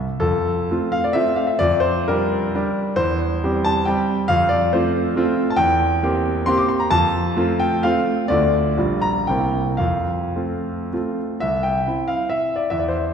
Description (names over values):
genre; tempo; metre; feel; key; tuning
classical, romantic triple-time dance for piano with dotted rhythms; 102-152 BPM; 3/4; rubato; F major; A4 = 440 Hz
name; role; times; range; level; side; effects
clear concert grand piano; solo; 0.0-13.1 s; Bb1 to D6; -18 LUFS; equal; none
room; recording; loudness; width
wet concert hall reverb, RT60 2.2 s; recorded in a church or concert hall; -18 LUFS; side -7 dB against mid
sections
0.2-11.4 A section; 11.4-13.1 B section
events
none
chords
0.2 F; 1.6 Gm7/F; 3.0 C/E; 4.3 F; 5.6 C7/E; 6.9 F; 8.3 Dm; 8.8 Gm7/Bb; 9.3 C7; 9.8 F; 11.4 C